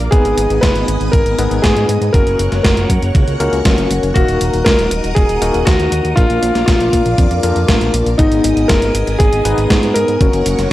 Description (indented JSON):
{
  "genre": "italo disco",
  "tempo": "119 BPM",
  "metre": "4/4",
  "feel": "straight",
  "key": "unclear",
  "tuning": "A4 = 440 Hz",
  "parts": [
    { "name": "phased string machine", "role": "sustained chords", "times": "0.0-10.7 s", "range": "Cb4 to Eb6", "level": "-24 LUFS", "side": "equal", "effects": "ensemble chorus, phaser, shimmer reverb" },
    { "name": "fat analog bass", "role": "bass", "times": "0.0-10.7 s", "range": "Eb1 to Bb2", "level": "-18 LUFS", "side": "equal", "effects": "none" },
    { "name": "gated 80s digital drum machine", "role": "drums", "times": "0.0-10.7 s", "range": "hi-hat, snare drum", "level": "-19 LUFS", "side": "right 1 dB", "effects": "gated reverb, gated reverb snare, overdrive" },
    { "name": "clear concert grand piano", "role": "melody", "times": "0.1-10.7 s", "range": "Eb4 to Cb5", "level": "-17 LUFS", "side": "equal", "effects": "analog delay, shimmer reverb" },
    { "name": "overdriven tine electric piano", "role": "stabs", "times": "0.1-10.7 s", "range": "Bb3 to Eb5", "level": "-20 LUFS", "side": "left 3 dB", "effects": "fast tremolo, shimmer reverb" },
    { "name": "electronic kick drum", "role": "drums", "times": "0.1-10.3 s", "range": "none", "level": "-14 LUFS", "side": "equal", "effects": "none" }
  ],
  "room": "light reverb",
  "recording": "dry, gritty hardware recording, cassette tape",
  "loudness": "-11 LUFS",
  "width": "side -15 dB against mid",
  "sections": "0.0-10.7 A section",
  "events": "none",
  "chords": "0.1 Abm; 2.1 Gb; 4.2 Ebm; 6.2 Bb; 8.2 Abm; 10.2 Gb"
}